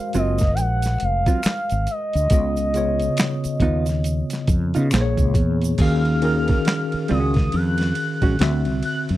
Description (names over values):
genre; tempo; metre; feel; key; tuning
R&B, neo-soul; 69 BPM; 4/4; swing 61% on 16ths; Eb minor; A4 = 440 Hz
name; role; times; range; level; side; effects
gliding portamento lead; melody; 0.0-9.0 s; Eb5 to Gb6; -26 LUFS; equal; chorus
tine electric piano; accompaniment; 0.0-9.2 s; Bb2 to F5; -25 LUFS; left 1 dB; medium stereo tremolo
hollow-body jazz guitar; second line; 0.1-8.4 s; Gb3 to Gb4; -23 LUFS; right 4 dB; none
boom bap sampler-style drum kit; drums; 0.1-9.2 s; crash cymbal, finger snaps, hi-hat, kick drum, ride cymbal, snare drum; -22 LUFS; equal; none
egg shaker and finger snaps; percussion; 0.1-5.8 s; none; -35 LUFS; right 1 dB; none
mellow fretless electric bass; bass; 0.2-9.2 s; F1 to Db3; -21 LUFS; equal; none
room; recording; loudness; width
little or no reverb; dry, close 1970s-style studio recording; -18 LUFS; side -15 dB against mid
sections
0.0-5.8 A section; 5.8-9.2 A section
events
none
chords
0.0 Ab13; 2.3 Db9; 4.9 Bbm7; 5.8 Ebm11; 8.4 D9